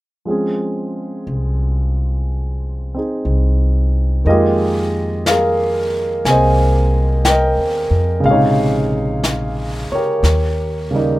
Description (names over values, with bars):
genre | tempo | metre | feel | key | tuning
jazz ballad | 60 BPM | 4/4 | swing 68% on 8ths | F minor | A4 = 440 Hz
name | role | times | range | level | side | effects
warm grand piano | accompaniment | 0.3-11.2 s | C3 to Ab5 | -17 LUFS | equal | none
upright bass | bass | 1.3-11.2 s | Bb1 to F2 | -18 LUFS | equal | none
jazz brush drum kit | drums | 4.3-11.2 s | brushed snare drum, hi-hat, snare drum | -25 LUFS | left 1 dB | none
room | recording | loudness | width
light reverb | rough home demo mix | -14 LUFS | side -17 dB against mid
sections
0.3-4.3 A section; 4.3-11.2 B section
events
none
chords
0.3 Dbmaj7; 4.3 Fm11; 8.2 Bbm11; 10.2 Eb7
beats
| 0.26 1.27 2.26 3.25 | 4.25 5.25 6.26 7.25 | 8.24 9.24 10.24